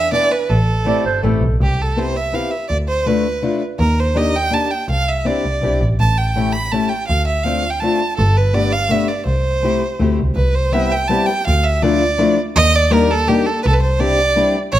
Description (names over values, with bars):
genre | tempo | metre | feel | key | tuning
musette waltz | 164 BPM | 3/4 | straight | C major | A4 = 439 Hz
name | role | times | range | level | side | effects
clear violin | melody | 0.0-14.8 s | G4 to B5 | -18 LUFS | right 3 dB | none
clear double bass | bass | 0.0-14.8 s | G1 to E2 | -18 LUFS | equal | none
fingerpicked acoustic archtop guitar | accompaniment | 0.1-14.6 s | F3 to G#4 | -19 LUFS | left 4 dB | none
breathy clarinet | second line | 0.9-1.6 s | A4 to D5 | -21 LUFS | right 5 dB | none
room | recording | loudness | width
moderate recital hall reverb, RT60 1.5 s | close, detailed microphones | -14 LUFS | side -12 dB against mid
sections
0.0-1.6 A section; 1.6-10.4 B section; 10.4-14.8 B section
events
none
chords
0.5 Am7; 1.6 Cmaj7; 2.7 Dmadd9; 3.8 Ebmaj7; 4.9 Cadd9; 6.0 A7; 7.1 Dm7; 8.2 Gadd9; 9.3 C6; 10.4 Cmaj7; 11.5 Dmadd9; 12.6 Ebmaj7; 13.6 Cadd9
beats
0.12 | 0.49 0.86 1.23 | 1.60 1.97 2.33 | 2.70 3.06 3.43 | 3.79 4.15 4.52 | 4.88 5.25 5.62 | 5.98 6.35 6.72 | 7.08 7.45 7.81 | 8.17 8.54 8.90 | 9.27 9.63 10.00 | 10.37 10.74 11.10 | 11.47 11.83 12.20 | 12.56 12.92 13.28 | 13.64 14.00 14.37 | 14.73